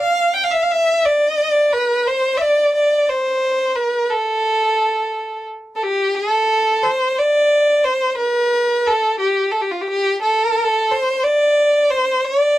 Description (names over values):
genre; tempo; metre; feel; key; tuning
arabic; 59 BPM (dotted quarters); 6/8; straight; A maqam bayati; A4 = 440 Hz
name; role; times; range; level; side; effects
clear violin; solo; 0.0-12.6 s; F4 to G5; -15 LUFS; equal; none
room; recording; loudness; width
light reverb; dry, close 1970s-style studio recording, lossy compression artefacts; -15 LUFS; side -14 dB against mid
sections
0.0-6.1 A section; 6.1-12.6 B section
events
none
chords
none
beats
| 0.03 1.05 | 2.07 3.09 | 4.10 5.12 | 6.14 7.15 | 8.17 9.18 | 10.20 11.21 | 12.23